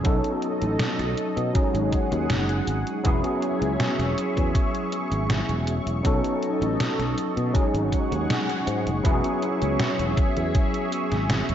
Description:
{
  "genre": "vaporwave",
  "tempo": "80 BPM",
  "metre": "4/4",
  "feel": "straight",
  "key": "E major",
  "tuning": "A4 = 440 Hz",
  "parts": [
    { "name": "overdriven tine electric piano", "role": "accompaniment", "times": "0.0-11.5 s", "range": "F#3 to A4", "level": "-26 LUFS", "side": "equal", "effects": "ensemble chorus, vintage 12-bit sampler grit, tape echo" },
    { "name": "lush unison pad", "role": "sustained chords", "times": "0.0-11.5 s", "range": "G#4 to C#6", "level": "-31 LUFS", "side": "right 1 dB", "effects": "chorus, phaser" },
    { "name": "sustaining fretless electric bass", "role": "bass", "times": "0.0-11.5 s", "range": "E1 to B2", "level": "-27 LUFS", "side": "equal", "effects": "tube saturation, wide subtle chorus" },
    { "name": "detuned 8-bit digital drum machine", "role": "drums", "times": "0.0-11.5 s", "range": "hi-hat, snare drum", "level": "-28 LUFS", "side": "equal", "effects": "gated reverb" },
    { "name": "electronic kick drum", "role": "drums", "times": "0.0-10.7 s", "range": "none", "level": "-24 LUFS", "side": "equal", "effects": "none" }
  ],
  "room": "light reverb, digital ambience",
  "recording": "nothing above 7.6 kHz",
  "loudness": "-22 LUFS",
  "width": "side -10 dB against mid",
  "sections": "0.0-9.0 A section; 9.0-11.5 B section",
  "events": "band accent 8.3-8.7",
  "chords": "0.0 B9; 1.5 G#7sus4; 3.0 E6; 6.0 B9; 7.5 G#7sus4; 9.0 E6",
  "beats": "| 0.05 0.80 1.55 2.30 | 3.05 3.80 4.55 5.30 | 6.05 6.80 7.55 8.30 | 9.05 9.80 10.55 11.30"
}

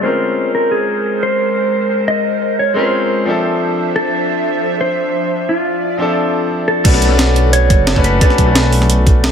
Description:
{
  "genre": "liquid drum and bass",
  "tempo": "176 BPM",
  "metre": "4/4",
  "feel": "straight",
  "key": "unclear",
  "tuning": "A4 = 441 Hz",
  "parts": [
    { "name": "mellow electric guitar", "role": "melody", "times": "0.0-8.7 s", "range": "F4 to D#5", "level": "-18 LUFS", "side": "equal", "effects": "digital delay" },
    { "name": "bright concert grand piano", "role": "accompaniment", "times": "0.0-9.3 s", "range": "F3 to E5", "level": "-18 LUFS", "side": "left 2 dB", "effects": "ping-pong delay" },
    { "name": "airy breathy pad", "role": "sustained chords", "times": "0.0-6.8 s", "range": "F3 to E5", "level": "-20 LUFS", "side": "right 2 dB", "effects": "chorus, sidechain pumping" },
    { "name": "dark detuned saw bass", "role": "bass", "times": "6.8-9.3 s", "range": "F#1 to B1", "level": "-14 LUFS", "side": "equal", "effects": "none" },
    { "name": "breakbeat sampler-style drum kit", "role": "drums", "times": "6.8-9.3 s", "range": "crash cymbal, hi-hat, snare drum", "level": "-17 LUFS", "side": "right 1 dB", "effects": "none" },
    { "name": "electronic kick drum", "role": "drums", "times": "6.8-9.1 s", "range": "none", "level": "-11 LUFS", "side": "equal", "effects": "none" }
  ],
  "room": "light reverb",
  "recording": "low-pass filter",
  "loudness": "-12 LUFS",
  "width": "side -8 dB against mid",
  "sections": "0.0-6.8 A section; 6.8-9.3 B section",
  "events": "filter sweep on grand piano 0.0-6.8; drop 6.8-9.3",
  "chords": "0.0 A#m9; 3.3 Dm9; 6.8 Bm9",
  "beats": "| 0.03 0.37 0.71 1.05 | 1.40 1.74 2.08 2.42 | 2.76 3.10 3.44 3.78 | 4.12 4.46 4.80 5.15 | 5.49 5.83 6.17 6.51 | 6.85 7.19 7.53 7.87 | 8.21 8.55 8.90 9.24"
}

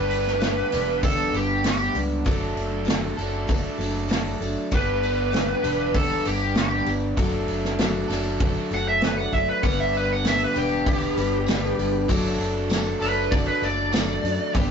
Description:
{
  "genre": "folk rock and heartland rock",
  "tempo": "98 BPM",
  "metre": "4/4",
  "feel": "straight",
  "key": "D major",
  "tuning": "A4 = 440 Hz",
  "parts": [
    { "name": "smooth overdriven lead guitar", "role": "melody", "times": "0.0-14.5 s", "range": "G4 to F#5", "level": "-24 LUFS", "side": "right 1 dB", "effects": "none" },
    { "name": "picked steel-string acoustic guitar", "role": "accompaniment", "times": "0.0-14.7 s", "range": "G2 to B4", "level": "-29 LUFS", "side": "left 3 dB", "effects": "none" },
    { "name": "overdriven electric guitar", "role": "riff", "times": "0.0-14.7 s", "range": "G2 to A4", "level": "-29 LUFS", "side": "right 1 dB", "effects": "none" },
    { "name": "fingered electric bass", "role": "bass", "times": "0.0-14.7 s", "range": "E1 to F#2", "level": "-30 LUFS", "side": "equal", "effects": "none" },
    { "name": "unplugged drum kit", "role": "drums", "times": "0.1-14.7 s", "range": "hi-hat, kick drum, snare drum", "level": "-26 LUFS", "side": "equal", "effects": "none" },
    { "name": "tambourine", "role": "percussion", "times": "10.3-14.1 s", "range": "none", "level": "-38 LUFS", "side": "right 1 dB", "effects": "none" }
  ],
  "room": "moderate booth ambience, RT60 0.2 s",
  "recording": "rough rehearsal-room recording, nothing above 7.6 kHz",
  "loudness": "-21 LUFS",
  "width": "side -6 dB against mid",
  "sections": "0.0-14.7 A section",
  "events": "lead electric guitar solo 0.0-14.7",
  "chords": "0.0 G; 2.3 D/F#; 4.7 G; 7.2 D/F#; 9.6 G; 12.1 D/F#",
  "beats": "0.41 1.03 1.64 | 2.26 2.87 3.49 4.10 | 4.72 5.33 5.95 6.56 | 7.18 7.79 8.41 9.02 | 9.64 10.25 10.87 11.48 | 12.10 12.71 13.32 13.94 | 14.55"
}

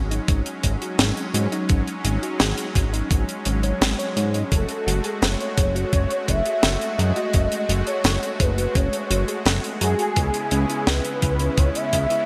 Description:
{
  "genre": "synthwave",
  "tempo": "85 BPM",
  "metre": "4/4",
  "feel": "straight",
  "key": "unclear",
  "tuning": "A4 = 440 Hz",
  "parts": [
    { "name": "soft supersaw", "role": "sustained chords", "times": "0.0-12.3 s", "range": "C#3 to F#4", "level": "-32 LUFS", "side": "equal", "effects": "sidechain pumping" },
    { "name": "thumb-piano-like synth pluck", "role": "arpeggios", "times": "0.0-12.2 s", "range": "B3 to C#5", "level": "-34 LUFS", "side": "equal", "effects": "chorus, digital delay" },
    { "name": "fat analog bass", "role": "bass", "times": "0.0-12.1 s", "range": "F#1 to G#2", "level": "-25 LUFS", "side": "equal", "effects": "none" },
    { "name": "deep reggae drum kit", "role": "drums", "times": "0.1-12.2 s", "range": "hi-hat, snare drum", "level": "-27 LUFS", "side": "equal", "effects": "studio ambience" },
    { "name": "electronic kick drum", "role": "drums", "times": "0.3-12.1 s", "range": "none", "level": "-24 LUFS", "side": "equal", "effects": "studio ambience" },
    { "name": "expressive synth lead", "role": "melody", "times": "4.5-12.3 s", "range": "G#4 to E5", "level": "-28 LUFS", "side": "equal", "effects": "ensemble chorus, digital delay" }
  ],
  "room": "moderate plate reverb, RT60 3.4 s",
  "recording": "bright 1980s-style digital production",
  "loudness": "-22 LUFS",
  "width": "mono",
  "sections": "0.0-12.3 A section",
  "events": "none",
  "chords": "0.0 G#7sus4; 4.5 F#madd9; 10.2 C#m7",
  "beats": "0.28 0.99 | 1.70 2.40 3.11 3.81 | 4.52 5.22 5.93 6.64 | 7.34 8.05 8.75 9.46 | 10.17 10.87 11.58"
}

